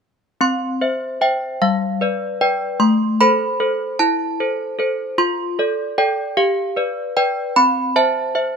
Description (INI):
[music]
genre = classical, lullaby for handbells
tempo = 50 BPM (dotted quarters)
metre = 6/8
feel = straight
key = C major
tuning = A4 = 440 Hz
[part]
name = desk bells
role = solo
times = 0.4-8.6 s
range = G3 to C6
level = -16 LUFS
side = equal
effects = none
[sound]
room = light reverb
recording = minimal, uncompressed stereo recording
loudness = -16 LUFS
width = side -6 dB against mid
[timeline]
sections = 0.4-8.6 A section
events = none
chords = 0.4 C; 1.6 G7; 2.8 Am; 5.2 Dm7/F; 6.4 G7; 7.6 C